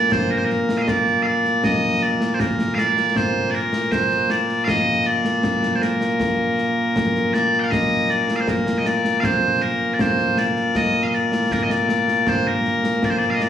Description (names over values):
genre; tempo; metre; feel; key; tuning
scottish traditional, Scottish pipe music; 79 BPM; 2/4; straight; Bb major; A4 = 440 Hz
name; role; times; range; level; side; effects
loud bright bagpipes; melody; 0.0-13.5 s; Bb2 to G5; -18 LUFS; equal; slapback echo
concert snare drum and concert bass drum; drums; 0.1-13.5 s; none; -24 LUFS; equal; none
room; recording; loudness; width
light reverb, small room ambience; live gig heard through the venue's PA, club reverb, studio reverb; -17 LUFS; side -9 dB against mid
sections
0.0-7.7 A section; 7.7-13.5 A section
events
none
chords
none